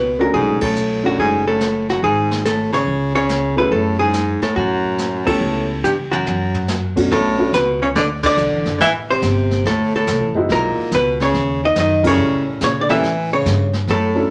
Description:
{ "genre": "jazz, small-group swing and bop", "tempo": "142 BPM", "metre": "4/4", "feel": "swing 66% on 8ths", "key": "unclear", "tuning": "A4 = 441 Hz", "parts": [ { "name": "archtop guitar, miked and amplified", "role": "melody", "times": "0.0-14.3 s", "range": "F#4 to E5", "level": "-22 LUFS", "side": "equal", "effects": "none" }, { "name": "clear baritone saxophone", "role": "second line", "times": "0.0-14.3 s", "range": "F#2 to E3", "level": "-23 LUFS", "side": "equal", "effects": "none" }, { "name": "upright bass", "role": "bass", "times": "0.0-14.3 s", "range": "F#1 to C#3", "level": "-26 LUFS", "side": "equal", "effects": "none" }, { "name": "warm upright piano", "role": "accompaniment", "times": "0.2-7.5, 10.3-14.3 s", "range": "B2 to A#4", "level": "-23 LUFS", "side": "equal", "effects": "none" }, { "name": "jazz brush drum kit", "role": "drums", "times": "0.3-14.3 s", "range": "brushed snare drum, crash cymbal, hi-hat, kick drum, ride cymbal, snare drum, toms", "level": "-30 LUFS", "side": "equal", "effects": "none" } ], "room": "wet club reverb, RT60 0.8 s", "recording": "none", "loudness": "-18 LUFS", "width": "mono", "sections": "0.0-7.1 A section; 7.1-14.3 B section", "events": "band accent 0.5, 5.2, 8.2, 12.0; drum fill 5.8-6.7", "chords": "0.3 Bm9; 2.0 Amaj7/G#; 2.9 C#5; 3.7 F#m9; 5.4 C#m7b5; 6.3 Bm7; 8.8 Am7; 9.6 D9; 10.5 Emaj9; 12.2 A7b9" }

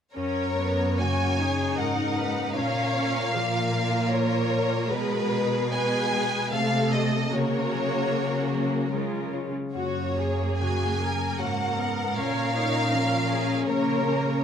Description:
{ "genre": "classical", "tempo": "75 BPM", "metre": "3/4", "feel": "uneven beats, rubato", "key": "F# major", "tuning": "A4 = 437 Hz", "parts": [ { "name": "warm symphonic violin section", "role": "melody", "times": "0.1-14.4 s", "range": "B4 to G#5", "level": "-28 LUFS", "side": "left 2 dB", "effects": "none" }, { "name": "warm symphonic violin section", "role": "second line", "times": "0.1-14.4 s", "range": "F#4 to C#5", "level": "-33 LUFS", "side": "equal", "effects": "none" }, { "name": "warm symphonic viola section", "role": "accompaniment", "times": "0.1-14.4 s", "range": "G#3 to C#5", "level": "-29 LUFS", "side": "right 2 dB", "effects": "none" }, { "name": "concert harp", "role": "arpeggios", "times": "0.2-14.4 s", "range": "F#2 to C#5", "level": "-32 LUFS", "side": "left 7 dB", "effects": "none" }, { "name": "rich symphonic cello section", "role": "bass", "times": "0.2-14.4 s", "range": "F#2 to C#3", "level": "-29 LUFS", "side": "right 2 dB", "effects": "none" } ], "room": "moderate scoring stage reverb, RT60 1.5 s", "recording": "close, detailed microphones", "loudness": "-23 LUFS", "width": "side -8 dB against mid", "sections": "0.2-14.4 A section", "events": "none", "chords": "0.2 F#; 2.6 A#m; 4.9 G#m/B; 6.5 Cdim7; 7.3 F#/C#; 8.9 C#; 9.7 F#; 12.2 A#m" }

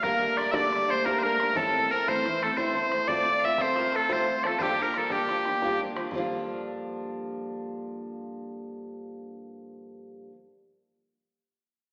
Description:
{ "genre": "celtic folk, Celtic slip jig", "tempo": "118 BPM (dotted quarters)", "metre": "9/8", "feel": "straight", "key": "G dorian", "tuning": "A4 = 440 Hz", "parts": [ { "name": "loud bright bagpipes", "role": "melody", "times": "0.0-5.8 s", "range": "G4 to E5", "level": "-28 LUFS", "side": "equal", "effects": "none" }, { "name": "bright fiddle", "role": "second line", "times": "0.0-5.8 s", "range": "G4 to F5", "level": "-36 LUFS", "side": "equal", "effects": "none" }, { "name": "mandolin", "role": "second line", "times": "0.0-5.8 s", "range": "G4 to E5", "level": "-36 LUFS", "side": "equal", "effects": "none" }, { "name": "picked steel-string acoustic guitar", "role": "accompaniment", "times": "0.0-10.4 s", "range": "G2 to F4", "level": "-35 LUFS", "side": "equal", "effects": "none" }, { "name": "bodhran", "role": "percussion", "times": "0.0-6.3 s", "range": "none", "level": "-41 LUFS", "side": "equal", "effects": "none" } ], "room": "wet recital hall reverb, RT60 1.5 s", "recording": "recorded in a church or concert hall, AM radio sound", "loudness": "-27 LUFS", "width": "mono", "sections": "0.0-6.1 A section; 6.1-9.2 B section", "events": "none", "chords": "0.0 Gmadd9; 1.6 Am; 3.1 F; 4.6 Gm7" }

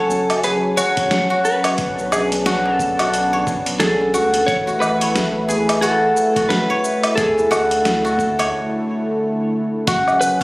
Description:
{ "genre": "organic downtempo", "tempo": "89 BPM", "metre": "4/4", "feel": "swing 59% on 16ths", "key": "F# minor", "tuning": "A4 = 440 Hz", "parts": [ { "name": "electric slide guitar", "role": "melody", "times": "0.0-10.4 s", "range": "A4 to C#5", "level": "-21 LUFS", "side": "equal", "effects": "tape echo" }, { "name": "warm analog pad", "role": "sustained chords", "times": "0.0-10.4 s", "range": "D3 to G#5", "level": "-23 LUFS", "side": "equal", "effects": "chorus, sidechain pumping" }, { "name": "guzheng", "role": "arpeggios", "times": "0.0-10.4 s", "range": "F#4 to C#5", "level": "-19 LUFS", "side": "equal", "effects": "tape echo" }, { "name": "warm sub bass", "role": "bass", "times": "0.0-10.4 s", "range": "F#1 to D2", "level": "-30 LUFS", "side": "equal", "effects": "sidechain pumping" }, { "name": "dusty soul sampler-style drum kit", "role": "drums", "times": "0.1-10.4 s", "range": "hi-hat, shaker, snare drum, woodblock", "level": "-23 LUFS", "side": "equal", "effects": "overdrive, small room ambience" }, { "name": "djembe", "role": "percussion", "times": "0.1-8.3 s", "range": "none", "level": "-34 LUFS", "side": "right 1 dB", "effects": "none" }, { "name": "electronic kick drum", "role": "drums", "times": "1.0-10.4 s", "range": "none", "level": "-24 LUFS", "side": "equal", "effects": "overdrive, small room ambience" } ], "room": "light reverb", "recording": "recorded on a phone in the room, studio reverb, compression", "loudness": "-15 LUFS", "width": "side -22 dB against mid", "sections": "0.0-9.9 A section", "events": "break 8.5-9.9", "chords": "0.0 F#m; 1.8 Bmadd9; 4.5 Aadd9; 7.2 Dadd9; 9.9 F#5" }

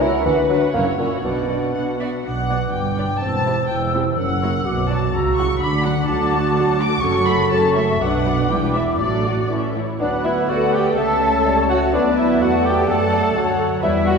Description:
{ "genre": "quick classical-period movement for symphony orchestra", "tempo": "124 BPM", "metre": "2/4", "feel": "straight", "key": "B minor, D major from 6.1 s", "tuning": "A4 = 440 Hz", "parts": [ { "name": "muted chamber violin section", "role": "melody", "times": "0.0-14.2 s", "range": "A#4 to D6", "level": "-26 LUFS", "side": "left 2 dB", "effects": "none" }, { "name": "muted symphonic violin section", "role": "second line", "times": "0.0-14.2 s", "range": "D4 to A5", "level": "-28 LUFS", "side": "left 3 dB", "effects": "none" }, { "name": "muted chamber viola section", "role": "accompaniment", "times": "0.0-14.2 s", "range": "E3 to D5", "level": "-27 LUFS", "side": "right 1 dB", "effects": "none" }, { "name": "warm bassoon", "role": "accompaniment", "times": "0.0-2.0, 10.0-14.2 s", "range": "A#2 to E4", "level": "-22 LUFS", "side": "right 1 dB", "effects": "none" }, { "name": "muted chamber cello section", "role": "bass", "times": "0.0-14.2 s", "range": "C#2 to A4", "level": "-25 LUFS", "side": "right 2 dB", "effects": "none" }, { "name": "muted studio double bass section", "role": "bass", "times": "0.0-14.2 s", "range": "E1 to F#2", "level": "-24 LUFS", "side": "right 3 dB", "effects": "none" }, { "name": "mellow hollow large flute ensemble", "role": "second line", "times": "2.2-14.1 s", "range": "D5 to E6", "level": "-26 LUFS", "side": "left 3 dB", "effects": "none" }, { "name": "dark French horn section", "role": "sustained chords", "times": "2.2-14.2 s", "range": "F#3 to A4", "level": "-24 LUFS", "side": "equal", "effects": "none" }, { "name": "clear clarinet", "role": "second line", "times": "2.3-14.2 s", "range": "E4 to F#5", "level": "-27 LUFS", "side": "left 2 dB", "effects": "none" }, { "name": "warm cor anglais", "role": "second line", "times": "10.0-14.2 s", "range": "D4 to A4", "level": "-27 LUFS", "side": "right 1 dB", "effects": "none" } ], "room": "wet concert hall reverb, RT60 1.9 s", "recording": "recorded in a church or concert hall", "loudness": "-16 LUFS", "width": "side -5 dB against mid", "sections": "0.0-2.3 A section; 2.3-10.0 B section; 10.0-14.2 A section", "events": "none", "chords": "0.3 Bm/D; 0.7 F#7; 1.2 Bm; 2.7 G; 3.2 C/E; 4.2 F#7; 4.7 Bm; 5.1 F#7/C#; 5.6 Bm/D; 6.1 D; 7.0 F#m; 8.0 Bm; 8.5 Em7; 9.0 D/A; 9.5 A; 10.0 D; 11.0 A/C#; 11.9 D; 12.9 D/F#" }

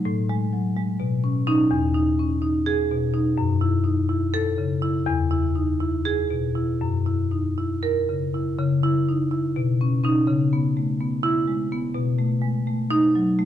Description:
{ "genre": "classical, contemporary piece for solo marimba", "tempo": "249 BPM (eighths)", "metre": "7/8", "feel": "rubato", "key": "unclear", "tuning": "A4 = 440 Hz", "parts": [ { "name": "marimba with medium hard mallets", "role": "solo", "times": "0.0-13.5 s", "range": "E2 to A#4", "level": "-20 LUFS", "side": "left 1 dB", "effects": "none" } ], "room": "moderate stone room reverb, RT60 1.3 s", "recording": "none", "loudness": "-20 LUFS", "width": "side -10 dB against mid", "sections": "0.0-8.6 A section; 8.6-13.5 A section", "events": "none", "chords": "0.1 F#madd9/A; 1.0 Badd9; 1.7 Emaj7; 3.4 F#m7; 5.1 E; 6.8 F#7; 8.6 C#m; 9.6 Badd9; 10.3 C#m7; 12.0 B7" }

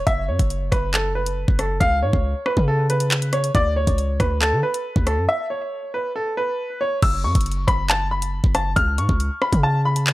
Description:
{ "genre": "hip hop, drill", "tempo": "138 BPM", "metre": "4/4", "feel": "half-time", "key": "F# minor", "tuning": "A4 = 440 Hz", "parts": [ { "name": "hard-hitting 808-style bass", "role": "bass", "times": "0.0-10.1 s", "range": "F#1 to D3", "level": "-22 LUFS", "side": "equal", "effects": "none" }, { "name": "clear upright piano", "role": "melody", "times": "0.1-10.1 s", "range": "A4 to E#6", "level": "-23 LUFS", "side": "equal", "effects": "analog delay" }, { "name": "drill drum kit", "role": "drums", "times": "0.1-10.1 s", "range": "crash cymbal, handclaps, hi-hat, kick drum, rim click", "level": "-21 LUFS", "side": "equal", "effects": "overdrive" } ], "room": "digital ambience", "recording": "dry, gritty hardware recording", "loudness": "-18 LUFS", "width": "side -18 dB against mid", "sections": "0.0-7.0 A section; 7.0-10.1 B section", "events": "break 5.3-7.0", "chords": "0.1 F#5; 1.8 C#5; 3.5 Dmaj7(no3); 5.3 N.C.; 7.0 F#5; 8.8 C#5" }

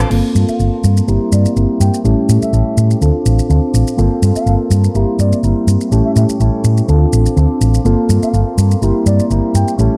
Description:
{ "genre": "filtered disco house", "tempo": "124 BPM", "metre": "4/4", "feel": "swing 54% on 16ths", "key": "G dorian", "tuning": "A4 = 441 Hz", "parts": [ { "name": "mellow tine electric piano", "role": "accompaniment", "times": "0.0-10.0 s", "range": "A3 to A4", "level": "-20 LUFS", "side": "equal", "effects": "phaser, low-pass filter" }, { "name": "clear studio violin section", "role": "sustained chords", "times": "0.0-10.0 s", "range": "Bb3 to D6", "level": "-33 LUFS", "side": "equal", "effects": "low-pass filter" }, { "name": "electric guitar with an envelope filter", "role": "riff", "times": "0.0-10.0 s", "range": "G3 to Bb4", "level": "-25 LUFS", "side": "equal", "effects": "warbly pitch drift, low-pass filter" }, { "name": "hollow-body short-scale fingered electric bass", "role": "bass", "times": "0.0-9.9 s", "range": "G1 to A2", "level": "-14 LUFS", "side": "equal", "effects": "low-pass filter" }, { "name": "house drum kit", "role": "drums", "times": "0.0-9.9 s", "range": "crash cymbal, hi-hat, rim click, shaker", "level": "-29 LUFS", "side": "equal", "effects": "none" }, { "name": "breathy bright jazz flute", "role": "melody", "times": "0.5-9.7 s", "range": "D5 to G5", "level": "-27 LUFS", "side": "equal", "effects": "low-pass filter" } ], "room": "little or no reverb", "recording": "none", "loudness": "-13 LUFS", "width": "mono", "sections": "0.1-10.0 A section", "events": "filter sweep 0.1-10.0", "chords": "0.1 Gm11; 1.1 C7/G; 2.0 A7; 3.0 Dm7; 4.0 Gm11; 4.9 C7/G; 5.9 A7; 6.9 Dm7; 7.9 Gm11; 8.8 C7/G" }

